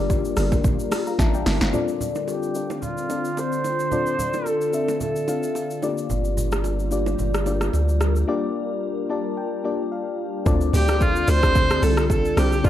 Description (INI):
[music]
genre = amapiano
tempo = 110 BPM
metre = 4/4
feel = swing 55% on 16ths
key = D minor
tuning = A4 = 440 Hz
[part]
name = mellow FM electric piano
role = accompaniment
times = 0.0-12.7 s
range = A3 to Bb5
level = -26 LUFS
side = left 5 dB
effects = chorus, low-pass filter
[part]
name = glassy FM pad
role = sustained chords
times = 0.0-12.7 s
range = D3 to Bb4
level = -30 LUFS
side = equal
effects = ensemble chorus, built-in reverb, phaser, sidechain pumping, low-pass filter
[part]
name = hollow log drum bass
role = bass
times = 0.0-1.7, 10.5-12.7 s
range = G1 to D2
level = -22 LUFS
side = equal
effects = none
[part]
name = deep house drum kit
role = drums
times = 0.1-12.7 s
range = hi-hat, kick drum, rim click, shaker, snare drum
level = -24 LUFS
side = equal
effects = overdrive
[part]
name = bongos and congas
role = percussion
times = 0.1-12.7 s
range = none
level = -34 LUFS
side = right 5 dB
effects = none
[part]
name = rich viola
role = melody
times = 2.3-5.8, 10.7-12.7 s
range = F4 to C5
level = -24 LUFS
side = right 1 dB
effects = low-pass filter, digital delay
[part]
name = round analog bass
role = bass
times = 6.1-8.2 s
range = G1 to D2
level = -22 LUFS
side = equal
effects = none
[sound]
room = little or no reverb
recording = dark, warm production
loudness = -20 LUFS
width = side -12 dB against mid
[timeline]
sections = 0.0-1.7 A section; 1.7-10.5 B section; 10.5-12.7 A section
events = drop 0.0-1.7, 10.5-12.7; drum fill 1.2-1.7; filter sweep 1.7-10.5; break 8.3-10.5; FM electric piano fill 8.8-10.5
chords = 0.0 Gm7; 1.7 Dm7; 5.8 Gm7; 10.5 Dm7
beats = 0.10 0.65 1.19 | 1.74 2.28 2.83 3.37 | 3.92 4.46 5.01 5.55 | 6.10 6.64 7.19 7.74 | 8.28 8.83 9.37 9.92 | 10.46 11.01 11.55 12.10 | 12.64